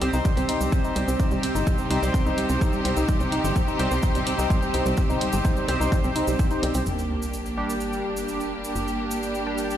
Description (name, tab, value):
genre	melodic techno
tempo	127 BPM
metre	4/4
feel	straight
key	unclear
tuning	A4 = 440 Hz
part	clear symphonic string section	sustained chords	0.0-9.8 s	C3 to G4	-29 LUFS	equal	sidechain pumping, low-pass filter
part	woody wave-folded pluck	arpeggios	0.0-6.8 s	G3 to Eb4	-28 LUFS	equal	chorus, vintage 12-bit sampler grit, sidechain pumping, dub echo
part	sync-sweep polysynth	stabs	0.0-9.8 s	G3 to C5	-29 LUFS	equal	chorus, cassette tape, sidechain pumping, dub echo
part	tight sequencer bass	bass	0.0-9.8 s	G1 to C2	-28 LUFS	equal	sidechain pumping
part	electronic hi-hat	drums	0.0-6.8 s	none	-32 LUFS	right 1 dB	low-pass filter on hats, low-pass filter on room
part	cabasa	percussion	0.1-9.8 s	none	-39 LUFS	right 1 dB	none
part	electronic kick drum	drums	0.3-6.5 s	none	-23 LUFS	equal	none
part	sub drop	sound effects	6.9-8.8 s	none	-34 LUFS	equal	none
room	light reverb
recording	played on a big sound system in a bare room, stone room reverb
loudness	-22 LUFS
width	side -10 dB against mid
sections	0.0-6.9 A section; 6.9-9.8 B section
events	impact 6.9-8.8; filter sweep on string section 6.9-9.8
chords	0.0 Cm; 6.9 Gm